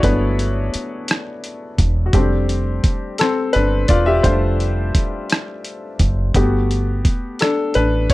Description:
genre	slow six-eight R&B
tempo	57 BPM (dotted quarters)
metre	6/8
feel	straight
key	G major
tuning	A4 = 440 Hz
part	clear baby grand piano	accompaniment	0.0-8.1 s	F#3 to E5	-20 LUFS	left 2 dB	none
part	deep dub fingered electric bass	bass	0.0-8.1 s	E1 to A1	-18 LUFS	equal	none
part	dusty soul sampler-style drum kit	drums	0.0-8.1 s	hi-hat, kick drum, rim click	-18 LUFS	equal	overdrive
room	little or no reverb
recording	dry, close 1970s-style studio recording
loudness	-16 LUFS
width	side -18 dB against mid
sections	0.0-8.1 A section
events	grand piano solo 0.0-8.1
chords	0.0 Gmaj9; 2.1 F6; 6.3 Gmaj9

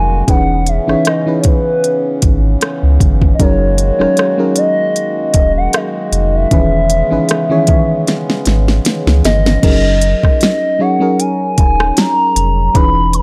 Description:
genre	contemporary R&B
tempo	77 BPM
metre	4/4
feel	swing 54% on 16ths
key	F# mixolydian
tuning	A4 = 441 Hz
part	gliding portamento lead	melody	0.0-13.2 s	B4 to B5	-18 LUFS	equal	chorus, delay
part	mellow FM electric piano	accompaniment	0.0-13.2 s	D#3 to C#5	-20 LUFS	equal	chorus
part	pedal harmonium	sustained chords	0.0-9.6 s	C#3 to F#4	-26 LUFS	equal	none
part	warm sub bass	bass	0.0-13.2 s	D#1 to C#2	-16 LUFS	equal	none
part	smooth R&B drum kit	drums	0.3-13.2 s	crash cymbal, hi-hat, kick drum, rim click, snare drum	-16 LUFS	equal	none
room	little or no reverb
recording	none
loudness	-13 LUFS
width	mono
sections	0.0-9.6 A section; 9.6-13.2 B section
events	drum fill 8.1-9.6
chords	0.3 C#m9/E; 3.4 F#69; 6.5 C#m9/E; 9.6 F#69

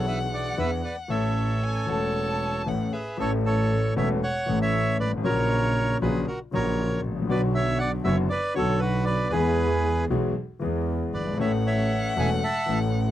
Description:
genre	tango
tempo	116 BPM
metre	4/4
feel	rubato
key	A major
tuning	A4 = 442 Hz
part	bandoneon	melody	0.0-12.8 s	F#4 to A5	-27 LUFS	right 2 dB	none
part	warm violin	second line	0.0-3.2, 11.4-13.1 s	E5 to A5	-33 LUFS	left 3 dB	none
part	warm concert grand piano	accompaniment	0.0-13.1 s	E1 to A4	-27 LUFS	left 3 dB	none
part	clear double bass	bass	0.0-13.1 s	E1 to E2	-28 LUFS	right 2 dB	none
room	light reverb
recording	dry, close 1970s-style studio recording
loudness	-23 LUFS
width	side -12 dB against mid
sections	0.0-3.2 A section; 3.2-13.1 B section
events	none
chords	0.0 E7; 1.1 A; 5.2 F#/A#; 7.3 Bm; 9.3 E; 11.4 A

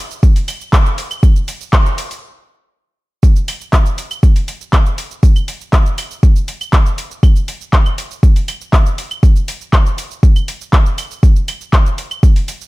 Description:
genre	techno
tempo	120 BPM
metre	4/4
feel	straight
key	none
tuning	none
part	house drum kit	drums	0.1-12.7 s	claves, handclaps, hi-hat, shaker	-21 LUFS	equal	sidechain pumping on hats, studio reverb, sidechain pumping on perc
part	electronic kick drum	drums	0.2-12.3 s	none	-10 LUFS	equal	studio reverb
room	digital ambience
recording	none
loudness	-11 LUFS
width	side -20 dB against mid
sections	0.0-3.2 A section; 3.2-12.7 B section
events	build-up 0.0-3.2; stop 2.2-3.2; drop 3.2-12.7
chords	none

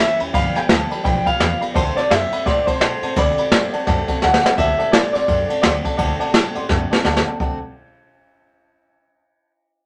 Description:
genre	rockabilly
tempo	170 BPM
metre	4/4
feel	swing 60% on 8ths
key	D mixolydian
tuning	A4 = 442 Hz
part	electric guitar through a small old amp	melody	0.0-7.0 s	C5 to A5	-22 LUFS	equal	none
part	dark upright piano	accompaniment	0.0-7.6 s	C#5 to C6	-28 LUFS	equal	none
part	picked steel-string acoustic guitar	accompaniment	0.0-7.6 s	G2 to G4	-31 LUFS	equal	none
part	upright bass	bass	0.0-7.6 s	G1 to B2	-30 LUFS	equal	none
part	jazz brush drum kit	drums	0.2-7.5 s	kick drum, ride cymbal, snare drum	-21 LUFS	equal	none
room	moderate club reverb, RT60 0.5 s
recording	none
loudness	-18 LUFS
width	mono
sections	0.0-4.6 A section; 4.6-7.4 B section; 7.4-8.8 C section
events	drum fill 4.2-4.6, 6.7-7.4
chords	0.3 G7; 1.8 D7; 7.4 D

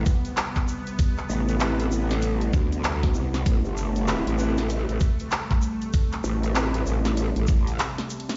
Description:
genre	glitch hop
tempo	97 BPM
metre	4/4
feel	swing 61% on 16ths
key	A minor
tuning	A4 = 440 Hz
part	warm analog pad	sustained chords	0.0-8.4 s	C3 to B3	-34 LUFS	equal	chorus, sidechain pumping
part	growl bass	bass	0.0-7.8 s	G1 to D2	-27 LUFS	equal	chorus, tube saturation
part	electronic kick drum	drums	0.1-7.6 s	none	-25 LUFS	equal	none
part	egg shaker	percussion	0.1-8.4 s	none	-46 LUFS	equal	none
part	drum and bass drum kit	drums	0.2-8.4 s	handclaps, hi-hat, snare drum	-31 LUFS	equal	none
part	mellow electric guitar	stabs	1.6-6.8 s	C4 to B4	-34 LUFS	equal	sidechain pumping, dub echo
room	digital ambience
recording	played on a big sound system in a bare room, stone room reverb, vinyl crackle, nothing above 7.7 kHz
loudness	-25 LUFS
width	mono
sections	0.0-8.4 A section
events	break 7.8-8.4; drum fill 8.1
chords	0.0 Am7

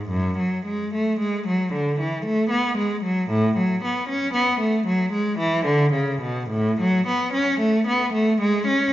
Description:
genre	classical, baroque-style suite movement for unaccompanied cello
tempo	56 BPM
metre	3/4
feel	rubato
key	unclear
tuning	A4 = 439 Hz
part	clear cello	solo	0.0-8.9 s	F#2 to C#4	-20 LUFS	equal	none
room	wet recital hall reverb, RT60 1.4 s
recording	nothing above 7.5 kHz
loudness	-20 LUFS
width	side -14 dB against mid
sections	0.0-8.9 A section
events	none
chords	none

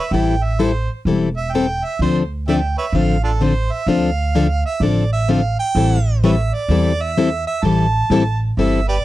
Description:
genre	acoustic string swing (jazz manouche)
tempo	128 BPM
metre	4/4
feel	swing 63% on 8ths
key	A minor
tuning	A4 = 440 Hz
part	warm harmonica	melody	0.0-9.0 s	D4 to A5	-22 LUFS	right 4 dB	slapback echo
part	picked plugged-in steel-string acoustic guitar	accompaniment	0.1-8.8 s	D3 to A4	-16 LUFS	left 4 dB	none
part	upright bass	bass	0.1-9.0 s	E1 to E2	-19 LUFS	right 1 dB	none
room	little or no reverb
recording	dry, close 1970s-style studio recording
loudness	-15 LUFS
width	side -15 dB against mid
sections	0.0-9.0 A section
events	harmonica solo 0.0-9.0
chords	0.0 Am7; 2.0 Dm7; 5.8 Am7

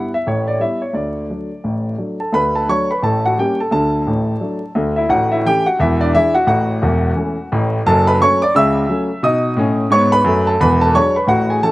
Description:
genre	jazz, stride piano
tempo	174 BPM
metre	4/4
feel	swing 61% on 8ths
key	D major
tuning	A4 = 440 Hz
part	warm grand piano	solo	0.0-11.7 s	E1 to E6	-14 LUFS	equal	none
room	little or no reverb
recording	recorded outdoors, with no room sound, vinyl crackle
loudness	-14 LUFS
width	side -18 dB against mid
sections	0.0-2.3 A section; 2.3-11.7 B section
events	none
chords	0.2 Asus2; 0.9 D; 3.0 A7b9; 3.7 D; 5.1 A; 5.8 E7; 6.5 A; 7.8 F#m; 9.2 B7; 10.6 E9

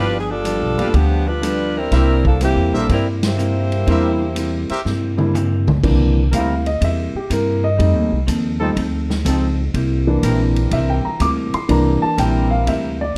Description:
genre	jazz, big band swing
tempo	123 BPM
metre	4/4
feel	swing 68% on 8ths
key	C mixolydian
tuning	A4 = 440 Hz
part	clear saxophone section	melody	0.0-4.7 s	E3 to C5	-24 LUFS	equal	plate reverb
part	vintage hollow-body jazz guitar	accompaniment	0.0-13.0 s	G2 to A4	-26 LUFS	equal	none
part	clear trumpet section	stabs	0.0-4.8 s	G4 to F5	-28 LUFS	equal	none
part	upright bass	bass	0.0-13.1 s	F#1 to G2	-21 LUFS	equal	none
part	swinging big-band drum kit	drums	0.4-12.8 s	crash cymbal, hi-hat, kick drum, ride cymbal, snare drum, toms	-27 LUFS	equal	none
part	warm baby grand piano	accompaniment	0.8-13.2 s	E3 to D6	-23 LUFS	equal	none
part	clear trombone section	sustained chords	6.3-12.9 s	F3 to Bb4	-28 LUFS	equal	none
room	moderate large studio reverb, RT60 1.0 s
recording	dark, warm production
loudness	-18 LUFS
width	mono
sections	0.0-5.8 A section; 5.8-13.2 B section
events	band accent 3.1; drum fill 4.9-5.8; grand piano solo 5.8-13.2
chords	0.0 G7; 1.9 C7; 7.8 F7; 9.7 C7

